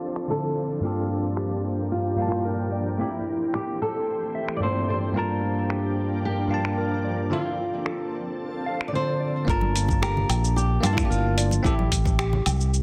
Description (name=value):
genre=sunset chillout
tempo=111 BPM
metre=4/4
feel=straight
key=G dorian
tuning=A4 = 441 Hz
part: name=nylon-string guitar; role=melody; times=0.0-12.8 s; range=D4 to D5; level=-32 LUFS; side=equal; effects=digital delay
part: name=shimmering ambient pad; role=sustained chords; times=0.0-9.5 s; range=E3 to A4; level=-35 LUFS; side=equal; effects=chorus, built-in reverb
part: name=dusty soul sampler-style drum kit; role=drums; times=0.2-12.8 s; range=finger snaps, hi-hat, shaker, woodblock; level=-33 LUFS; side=equal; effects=overdrive, soft clipping on snare, low-pass filter on snare, low-pass filter on perc, low-pass filter on hats
part: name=bell-like tine electric piano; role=accompaniment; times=0.3-11.7 s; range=G2 to A5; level=-30 LUFS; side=equal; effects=low-pass filter, digital delay
part: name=mellow electric guitar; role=arpeggios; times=0.8-12.4 s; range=E4 to F5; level=-37 LUFS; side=equal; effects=digital delay
part: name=fingered electric bass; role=bass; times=9.5-12.8 s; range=G1 to G2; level=-26 LUFS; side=equal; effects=none
part: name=electronic kick drum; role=drums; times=9.5-12.2 s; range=none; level=-28 LUFS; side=equal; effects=none
part: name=congas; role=percussion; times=9.6-12.6 s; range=none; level=-36 LUFS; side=equal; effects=none
room=moderate plate reverb, RT60 1.6 s, digital ambience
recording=dense, heavily limited modern master, low-pass filter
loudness=-25 LUFS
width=mono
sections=0.0-9.5 A section; 9.5-12.8 B section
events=filter sweep on tine electric piano 0.0-9.5; filter sweep 0.0-9.5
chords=0.0 Dm7; 0.8 Gm7; 3.0 Am7; 4.9 Gm7; 7.3 Dm7; 9.5 Gm7; 11.6 Am7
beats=0.29 | 0.83 1.38 1.92 2.46 | 3.00 3.54 4.08 4.62 | 5.16 5.70 6.24 6.78 | 7.32 7.86 8.40 8.94 | 9.48 10.02 10.56 11.11 | 11.65 12.19 12.73